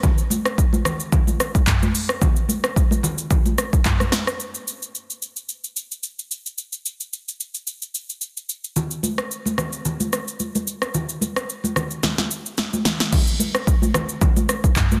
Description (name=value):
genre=amapiano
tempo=110 BPM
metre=4/4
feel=swing 55% on 16ths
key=none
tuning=none
part: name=deep house drum kit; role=drums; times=0.0-15.0 s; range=crash cymbal, handclaps, hi-hat, kick drum, rim click, shaker, snare drum, toms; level=-22 LUFS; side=equal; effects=soft clipping on snare
part: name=congas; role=percussion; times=0.0-4.1, 8.8-15.0 s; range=none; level=-28 LUFS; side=equal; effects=none
room=digital ambience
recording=dense, heavily limited modern master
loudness=-22 LUFS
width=mono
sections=0.0-4.4 A section; 4.4-13.1 B section; 13.1-15.0 A section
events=drop 0.0-4.4, 13.1-15.0; drum fill 12.0-13.1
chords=none